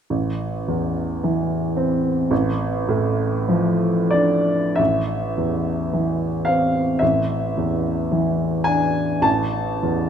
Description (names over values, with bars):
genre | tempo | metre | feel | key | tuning
classical, romantic nocturne for solo piano | 43-57 BPM | 4/4 | rubato | A minor | A4 = 438 Hz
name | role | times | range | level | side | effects
clear baby grand piano | solo | 0.1-10.1 s | A1 to A5 | -18 LUFS | equal | none
room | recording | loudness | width
wet recital hall reverb, RT60 1.7 s | none | -18 LUFS | side -8 dB against mid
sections
0.1-4.8 A section; 4.8-10.1 B section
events
none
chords
0.1 Am; 2.3 Dm/A; 4.8 Am; 7.0 Asus4; 9.3 A5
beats
| 0.10 1.24 2.31 3.49 | 4.79 5.93 7.01 8.11 | 9.25